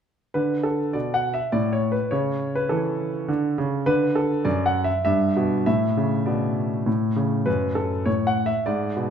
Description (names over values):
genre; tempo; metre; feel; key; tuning
classical-period piano sonatina; 101 BPM; 3/4; rubato; D major; A4 = 440 Hz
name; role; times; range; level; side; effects
clear concert grand piano; solo; 0.3-9.1 s; F#2 to F#5; -21 LUFS; equal; none
room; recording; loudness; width
moderate recital hall reverb, RT60 1.7 s; minimal, uncompressed stereo recording; -21 LUFS; side -8 dB against mid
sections
0.4-9.1 A section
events
none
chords
0.4 D5; 2.1 A/C#; 3.9 D; 5.1 Em/G; 5.7 D5/A; 6.9 A; 7.5 F#m